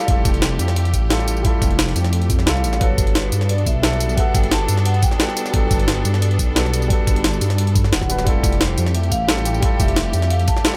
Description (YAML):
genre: liquid drum and bass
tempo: 176 BPM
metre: 4/4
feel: straight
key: unclear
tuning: A4 = 442 Hz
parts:
  - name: vibraphone with medium mallets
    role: melody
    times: 0.0-0.2, 2.5-10.8 s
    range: B4 to A5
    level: -30 LUFS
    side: equal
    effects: digital delay
  - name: dark grand piano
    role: accompaniment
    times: 0.0-10.8 s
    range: F#3 to B4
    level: -28 LUFS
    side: equal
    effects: delay
  - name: clear studio string section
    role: sustained chords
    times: 0.0-10.8 s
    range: A3 to A4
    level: -33 LUFS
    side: equal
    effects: sidechain pumping
  - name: jungle sampler-style drum kit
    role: drums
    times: 0.0-10.8 s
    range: hi-hat, snare drum, tambourine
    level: -25 LUFS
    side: equal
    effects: none
  - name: dark detuned saw bass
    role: bass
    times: 0.1-10.5 s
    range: D1 to G2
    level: -22 LUFS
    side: equal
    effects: none
  - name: electronic kick drum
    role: drums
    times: 0.1-10.6 s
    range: none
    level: -22 LUFS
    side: equal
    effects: none
room: little or no reverb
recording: none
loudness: -18 LUFS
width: mono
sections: 0.0-10.8 A section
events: none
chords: 0.0 Fmaj9; 2.8 Gmaj9; 8.3 Fmaj9